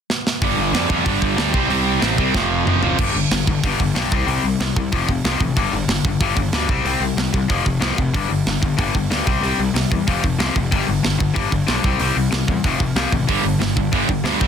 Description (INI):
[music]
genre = punk rock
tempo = 187 BPM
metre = 4/4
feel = straight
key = unclear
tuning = A4 = 439 Hz
[part]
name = tight metal drum kit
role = drums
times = 0.1-14.5 s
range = crash cymbal, hi-hat, kick drum, snare drum, toms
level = -22 LUFS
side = right 1 dB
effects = none
[part]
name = cranked stack guitar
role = riff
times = 0.4-14.5 s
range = F2 to C4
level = -20 LUFS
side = left 6 dB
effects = overdrive
[part]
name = cranked stack guitar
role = riff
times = 0.4-3.0, 13.3-14.5 s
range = F2 to C4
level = -21 LUFS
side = right 17 dB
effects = overdrive
[part]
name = fuzz picked electric bass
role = bass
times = 0.4-14.5 s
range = F1 to F2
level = -24 LUFS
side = right 1 dB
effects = overdrive
[sound]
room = little or no reverb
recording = dense, heavily limited modern master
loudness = -16 LUFS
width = side -8 dB against mid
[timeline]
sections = 0.4-3.0 A section; 3.0-14.5 B section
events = drum fill 0.1-0.4, 2.3-3.0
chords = 0.4 G5; 1.5 C5; 2.3 F5; 3.0 G5; 4.1 C5; 4.9 F; 5.6 G5; 6.7 C5; 7.5 F5; 8.1 G5; 9.3 C5; 10.1 F5; 10.7 G5; 11.8 C; 12.6 F; 13.3 G5